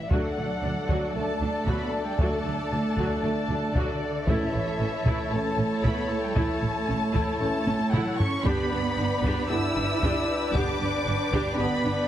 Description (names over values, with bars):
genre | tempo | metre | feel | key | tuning
cinematic, epic orchestral film score | 115 BPM | 4/4 | straight | D major | A4 = 440 Hz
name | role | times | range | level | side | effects
dark symphonic violin section | melody | 0.0-12.1 s | D5 to E6 | -33 LUFS | left 2 dB | none
warm symphonic violin section | second line | 0.0-12.1 s | A4 to E5 | -33 LUFS | left 2 dB | none
warm symphonic cello section | bass | 0.0-12.1 s | D3 to E4 | -32 LUFS | right 3 dB | none
rich symphonic viola section | accompaniment | 0.1-11.9 s | F#3 to G4 | -33 LUFS | right 1 dB | none
mellow French horn section | sustained chords | 0.1-11.8 s | C#4 to A4 | -36 LUFS | left 3 dB | none
warm trombone section | sustained chords | 0.1-11.8 s | D3 to B3 | -38 LUFS | right 2 dB | none
warm woodwind section | sustained chords | 0.1-12.1 s | A3 to D5 | -33 LUFS | left 1 dB | none
warm symphonic double bass section | bass | 0.1-11.9 s | G1 to D2 | -31 LUFS | right 2 dB | none
solo taiko drums | drums | 0.1-11.8 s | none | -30 LUFS | equal | none
timpani | percussion | 4.3-5.0 s | A2 | -37 LUFS | left 1 dB | none
room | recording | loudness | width
moderate recital hall reverb, RT60 1.4 s | heavily compressed radio sound, lossy compression artefacts | -24 LUFS | side -11 dB against mid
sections
0.1-12.1 A section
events
drum fill 7.7-8.5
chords
0.1 D; 4.3 A; 8.5 G